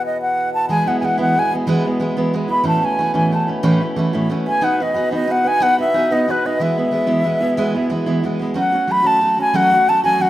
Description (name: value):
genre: celtic folk, Celtic slide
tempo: 122 BPM (dotted quarters)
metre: 12/8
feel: straight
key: E major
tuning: A4 = 441 Hz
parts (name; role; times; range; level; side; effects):
- wooden flute; melody; 0.0-10.3 s; B4 to B5; -17 LUFS; equal; slapback echo
- hand-pumped harmonium; drone; 0.0-8.6 s; E2 to B2; -28 LUFS; left 1 dB; none
- picked steel-string acoustic guitar; accompaniment; 0.7-10.3 s; A2 to B4; -19 LUFS; right 2 dB; none
room: moderate plate reverb, RT60 3.5 s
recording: rough home demo mix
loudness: -15 LUFS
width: side -14 dB against mid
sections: 0.0-8.6 A section; 8.6-10.3 B section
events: none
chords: 0.0 E5; 0.7 E; 2.7 A; 4.6 B; 6.6 E; 8.6 F#m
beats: 0.22 | 0.70 1.19 1.68 2.17 | 2.66 3.15 3.64 4.13 | 4.62 5.11 5.60 6.09 | 6.59 7.08 7.57 8.06 | 8.55 9.05 9.54 10.03